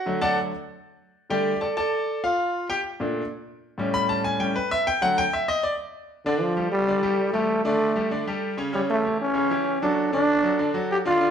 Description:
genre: latin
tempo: 194 BPM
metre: 4/4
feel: straight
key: unclear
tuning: A4 = 441 Hz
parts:
  - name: bright grand piano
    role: accompaniment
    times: 0.0-11.3 s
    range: A2 to B5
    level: -24 LUFS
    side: left 1 dB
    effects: none
  - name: growling trombone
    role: melody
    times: 6.3-11.3 s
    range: D3 to G4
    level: -22 LUFS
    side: equal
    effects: none
room: wet large studio reverb, RT60 1.2 s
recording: band playing live in one room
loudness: -22 LUFS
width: side -8 dB against mid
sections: 0.0-6.3 A section; 6.3-11.3 B section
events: grand piano solo 0.0-6.3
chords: 0.1 D; 1.3 Dsus4; 2.5 Bbmaj7; 3.8 A7; 5.0 D; 6.3 Gsus2; 7.5 Dsus4; 8.7 A7; 10.0 D

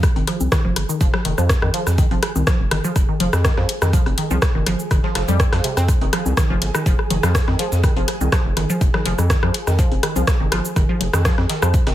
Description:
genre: minimal techno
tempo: 123 BPM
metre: 4/4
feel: straight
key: F minor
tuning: A4 = 445 Hz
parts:
  - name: round analog bass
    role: bass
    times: 0.0-11.9 s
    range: F1 to F2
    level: -21 LUFS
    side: equal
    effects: sidechain pumping
  - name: dusty soul sampler-style drum kit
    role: drums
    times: 0.0-11.9 s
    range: hi-hat, snare drum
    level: -33 LUFS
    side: equal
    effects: overdrive, high-pass filter on snare, studio reverb, high-pass filter on hats, high-pass filter on room
  - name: electronic kick drum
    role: drums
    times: 0.0-11.8 s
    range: none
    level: -18 LUFS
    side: equal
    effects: studio reverb
  - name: garage drum kit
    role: drums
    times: 0.0-11.8 s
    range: cabasa, hi-hat, rim click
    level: -25 LUFS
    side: equal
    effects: studio reverb
  - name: electronic rim click and congas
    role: percussion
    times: 0.0-11.9 s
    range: none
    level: -25 LUFS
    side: left 3 dB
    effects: studio reverb, digital delay
  - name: flickering grainy texture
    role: texture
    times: 0.0-11.9 s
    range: Ab4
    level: -31 LUFS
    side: right 2 dB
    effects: built-in reverb, sidechain pumping
  - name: resonant blip pluck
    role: riff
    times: 0.2-11.9 s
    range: C3 to C4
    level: -24 LUFS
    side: right 1 dB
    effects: phaser, sidechain pumping, digital delay
room: digital ambience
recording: none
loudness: -16 LUFS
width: side -13 dB against mid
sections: 0.0-11.9 A section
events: none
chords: 0.0 Fm

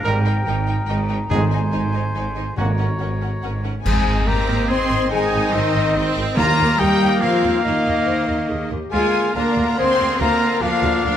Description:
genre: cinematic, heroic adventure film score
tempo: 142 BPM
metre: 3/4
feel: straight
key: Ab lydian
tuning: A4 = 440 Hz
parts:
  - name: clear oboe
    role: second line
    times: 0.0-11.2 s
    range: Bb3 to Db5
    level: -27 LUFS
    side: equal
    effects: none
  - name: dark clarinet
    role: second line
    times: 0.0-3.6, 8.1-8.9 s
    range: Eb4 to C5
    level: -32 LUFS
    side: left 2 dB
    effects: none
  - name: mellow concert flute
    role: second line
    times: 0.0-11.2 s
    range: Eb5 to C6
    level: -27 LUFS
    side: left 2 dB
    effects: none
  - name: warm symphonic violin section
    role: second line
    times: 0.0-11.2 s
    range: Bb4 to C6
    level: -30 LUFS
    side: left 2 dB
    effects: none
  - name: bright symphonic viola section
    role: accompaniment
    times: 0.0-11.2 s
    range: Bb3 to F4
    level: -28 LUFS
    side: right 1 dB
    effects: none
  - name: dark French horn section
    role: sustained chords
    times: 0.0-11.2 s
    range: Bb3 to C5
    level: -24 LUFS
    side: left 5 dB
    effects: none
  - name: mellow trumpet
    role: stabs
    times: 0.0-11.2 s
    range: Gb4 to F5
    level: -27 LUFS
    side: right 1 dB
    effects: none
  - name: clear symphonic double bass section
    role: bass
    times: 0.0-11.1 s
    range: Ab1 to Eb2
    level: -25 LUFS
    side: right 2 dB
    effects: none
  - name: rich symphonic cello section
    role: bass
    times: 0.0-11.2 s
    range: Ab2 to C4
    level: -24 LUFS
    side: right 2 dB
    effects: none
  - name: dark symphonic violin section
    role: melody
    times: 0.1-11.2 s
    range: Eb5 to C6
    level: -29 LUFS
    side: left 4 dB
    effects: none
  - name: clear trombone section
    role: sustained chords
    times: 0.1-11.2 s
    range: D3 to C4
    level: -28 LUFS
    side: right 3 dB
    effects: none
  - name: timpani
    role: percussion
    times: 1.3-3.2, 6.4-7.0 s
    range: Ab2 to Eb3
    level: -25 LUFS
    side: left 1 dB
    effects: none
  - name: clash cymbals and concert bass drum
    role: percussion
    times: 3.9-4.7 s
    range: none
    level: -23 LUFS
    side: left 1 dB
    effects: none
room: moderate scoring stage reverb, RT60 1.5 s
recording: faint mains hum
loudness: -16 LUFS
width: side -10 dB against mid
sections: 0.0-3.9 A section; 3.9-11.2 B section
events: build-up 0.0-3.9; band accent 3.9-4.3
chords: 0.0 Eb/Ab; 1.3 Ab; 2.6 Gb/Ab; 3.9 Ab; 6.4 Ebsus2; 8.9 Bb/D

